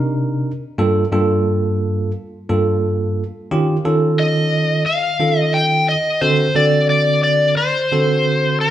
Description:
blues; 88 BPM; 4/4; straight; G minor; A4 = 440 Hz
bell-like tine electric piano; accompaniment; 0.0-8.7 s; G2 to Bb4; -17 LUFS; right 1 dB; fast stereo tremolo
overdriven slide guitar; melody; 4.2-8.7 s; Bb4 to G5; -16 LUFS; left 2 dB
wet large studio reverb, RT60 1.3 s; band playing live in one room; -15 LUFS; side -12 dB against mid
0.0-8.7 A section
0.0 Cm7; 0.8 Gm7; 3.5 Eb7(no3); 6.2 D7

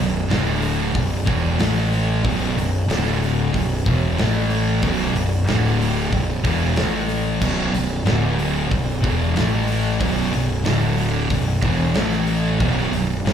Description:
stoner and doom metal; 93 BPM; 4/4; straight; B minor; A4 = 440 Hz
thick fuzz guitar; riff; 0.0-13.3 s; B1 to A3; -24 LUFS; left 9 dB; distortion
thick fuzz guitar; riff; 0.0-13.3 s; B1 to A3; -22 LUFS; right 7 dB; distortion, slapback echo
fuzz fingered electric bass; bass; 0.0-13.3 s; B0 to A1; -23 LUFS; equal; overdrive
big rock drum kit; drums; 0.3-13.3 s; crash cymbal, hi-hat, kick drum, snare drum; -26 LUFS; equal
little or no reverb; live gig heard through the venue's PA, club reverb; -18 LUFS; side -8 dB against mid
0.0-13.3 A section
0.3 D5; 1.0 B5; 1.6 A5; 2.2 B5; 2.9 D5; 3.5 B5; 4.2 A5; 4.8 B5; 5.5 D5; 6.1 B5; 6.8 A5; 7.4 B5; 8.1 D5; 8.7 B5; 9.4 A5; 10.0 B5; 10.7 D5; 11.3 B5; 12.0 A5; 12.6 B5

